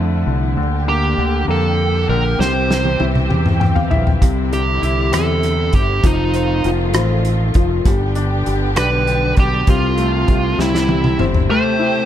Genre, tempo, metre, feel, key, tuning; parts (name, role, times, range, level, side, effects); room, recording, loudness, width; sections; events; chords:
six-eight pop ballad; 66 BPM (dotted quarters); 6/8; straight; A4 = 440 Hz
bright upright piano; accompaniment; 0.0-12.1 s; C3 to G5; -22 LUFS; left 6 dB
rich studio string section; sustained chords; 0.0-12.1 s; C3 to G4; -24 LUFS; left 1 dB
fingered electric bass; bass; 0.0-11.5 s; F1 to F2; -18 LUFS; right 1 dB
dark smooth lead guitar; melody; 0.9-12.1 s; Eb4 to C5; -20 LUFS; right 3 dB; overdrive, digital delay
natural country drum kit; drums; 2.4-11.5 s; hi-hat, kick drum, rim click, snare drum, toms; -18 LUFS; equal
light reverb; dark, warm production; -14 LUFS; side -10 dB against mid
0.0-11.5 A section
drum fill 2.4-4.2, 10.6-11.5; upright piano fill 3.3-4.2
0.0 Dmadd9; 0.6 Gm/D; 2.4 C; 4.2 Cadd9; 6.0 F7; 7.9 G; 9.7 F/C; 10.6 Cadd9; 11.5 Am7